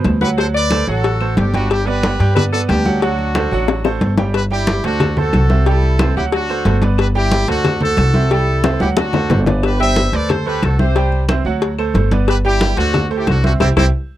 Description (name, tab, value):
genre	latin, salsa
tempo	182 BPM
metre	4/4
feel	straight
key	G major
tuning	A4 = 440 Hz
part	bright baby grand piano	accompaniment	0.0-13.9 s	B2 to G5	-22 LUFS	right 7 dB	none
part	upright bass	bass	0.0-13.9 s	G1 to G2	-17 LUFS	equal	none
part	congas	percussion	0.0-13.8 s	none	-20 LUFS	equal	none
part	cowbell and bongos	percussion	0.0-13.8 s	none	-21 LUFS	left 7 dB	none
part	claves	percussion	0.1-13.8 s	none	-30 LUFS	left 17 dB	none
part	brilliant horn section	melody	0.2-13.9 s	C4 to E5	-20 LUFS	left 1 dB	none
room	little or no reverb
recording	dry, close 1970s-style studio recording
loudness	-13 LUFS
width	side -13 dB against mid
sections	0.0-4.3 A section; 4.3-14.2 B section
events	drum fill 3.7-4.3, 8.6-9.6; band accent 13.6-14.2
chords	0.4 D7; 1.7 Gmaj7; 3.0 D7; 4.3 Gsus2; 5.0 D7; 5.7 C; 6.3 D7; 7.0 Gadd9; 7.6 D7; 8.3 C; 9.0 D7; 9.6 Gadd9; 10.3 D7; 11.0 C; 11.6 D7; 12.3 Gadd9; 12.9 D5; 13.6 C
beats	0.05 | 0.38 0.71 1.04 1.37 | 1.70 2.03 2.36 2.69 | 3.02 3.35 3.68 4.01 | 4.34 4.67 5.00 5.33 | 5.67 6.00 6.33 6.66 | 6.99 7.32 7.65 7.98 | 8.31 8.64 8.97 9.30 | 9.63 9.96 10.29 10.62 | 10.96 11.29 11.62 11.95 | 12.28 12.61 12.94 13.27 | 13.60